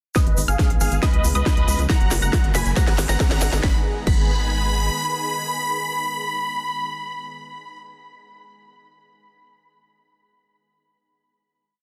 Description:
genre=uplifting trance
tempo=138 BPM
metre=4/4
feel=straight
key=G# dorian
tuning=A4 = 440 Hz
part: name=big supersaw lead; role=melody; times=0.2-7.8 s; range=G#4 to B5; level=-28 LUFS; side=equal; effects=phaser, sidechain pumping, low-pass filter, delay
part: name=unison pluck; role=second line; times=0.2-7.8 s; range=D#6 to B6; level=-34 LUFS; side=equal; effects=sidechain pumping
part: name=analog string pad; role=sustained chords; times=0.2-7.4 s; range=C#3 to G#4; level=-35 LUFS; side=equal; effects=ensemble chorus, sidechain pumping
part: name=electronic kick drum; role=drums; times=0.2-4.2 s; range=none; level=-22 LUFS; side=equal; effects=studio reverb
part: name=techno drum kit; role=drums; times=0.2-4.2 s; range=crash cymbal, hi-hat, snare drum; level=-31 LUFS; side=equal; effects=studio reverb
part: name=egg shaker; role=percussion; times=0.2-3.6 s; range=none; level=-34 LUFS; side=equal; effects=none
part: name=riser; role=sound effects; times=1.8-3.6 s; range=none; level=-38 LUFS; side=equal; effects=none
part: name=tight sequencer bass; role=bass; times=0.3-4.9 s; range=F#1 to C#2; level=-25 LUFS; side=equal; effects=sidechain pumping
room=digital ambience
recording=dense, heavily limited modern master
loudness=-21 LUFS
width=mono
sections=0.2-3.6 build; 3.6-7.1 final chord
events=build-up 0.2-3.6; drum fill 0.2-3.6; filter sweep on supersaw synth 0.2-3.6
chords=0.2 G#m; 1.0 C#7; 1.9 F#; 2.8 G#m

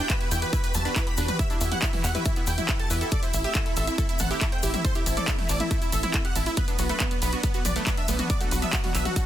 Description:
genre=uplifting trance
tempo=139 BPM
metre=4/4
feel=straight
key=E minor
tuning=A4 = 440 Hz
part: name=big supersaw lead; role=melody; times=0.0-9.3 s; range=B3 to B5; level=-30 LUFS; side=right 1 dB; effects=sidechain pumping, digital delay
part: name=lush unison pad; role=sustained chords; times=0.0-9.3 s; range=E3 to G4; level=-36 LUFS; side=left 1 dB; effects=chorus, phaser, sidechain pumping
part: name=analog pluck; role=arpeggios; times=0.0-9.2 s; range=B2 to A5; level=-34 LUFS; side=right 4 dB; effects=chorus, sidechain pumping, digital delay
part: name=electronic kick drum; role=drums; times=0.1-9.2 s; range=none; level=-27 LUFS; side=equal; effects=none
part: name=punchy analog drum machine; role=drums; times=0.1-9.2 s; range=handclaps, hi-hat, ride cymbal, toms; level=-30 LUFS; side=left 1 dB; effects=sidechain pumping on hats, sidechain pumping on cymbals, sidechain pumping on toms
part: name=egg shaker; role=percussion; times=0.1-9.3 s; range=none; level=-37 LUFS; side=left 5 dB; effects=none
part: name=tight sequencer bass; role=bass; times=0.3-9.1 s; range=A1 to E2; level=-28 LUFS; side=equal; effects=tube saturation, sidechain pumping
room=little or no reverb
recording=dense, heavily limited modern master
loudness=-23 LUFS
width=side -12 dB against mid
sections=0.0-9.3 A section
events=none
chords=0.0 Emadd9; 3.1 Am; 6.6 Bm

